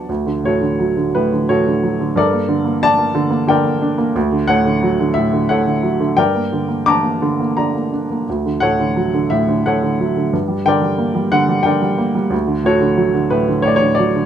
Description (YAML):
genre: classical, lyrical solo piano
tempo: 89 BPM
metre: 3/4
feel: rubato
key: D major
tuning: A4 = 440 Hz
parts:
  - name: warm upright piano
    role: solo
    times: 0.0-14.3 s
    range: D2 to D6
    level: -14 LUFS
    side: right 1 dB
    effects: none
room: moderate studio reverb, RT60 0.6 s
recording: dark, warm production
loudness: -14 LUFS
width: side -9 dB against mid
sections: 0.1-14.3 A section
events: none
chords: 0.1 Dmaj7; 2.2 Gmadd9; 4.2 Dmaj7; 6.2 Gmadd9; 8.3 Dmaj7; 10.3 Gm; 12.3 D